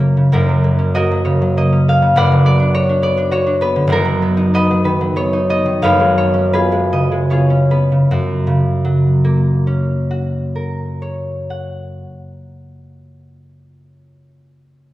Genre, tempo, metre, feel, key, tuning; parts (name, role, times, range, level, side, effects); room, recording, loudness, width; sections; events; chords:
classical, solo harp piece; 70-103 BPM; 3/4; rubato; F# major; A4 = 439 Hz
concert harp; solo; 0.0-14.3 s; F#1 to C#6; -13 LUFS; equal
wet recital hall reverb, RT60 1.5 s; heard from further back in the room; -13 LUFS; side -16 dB against mid
0.3-8.1 A section; 8.1-12.8 B section
slowing down 3.0-8.1
0.3 F#; 2.1 Bm/F#; 3.9 B/F#; 5.8 C#7/F#; 8.1 F#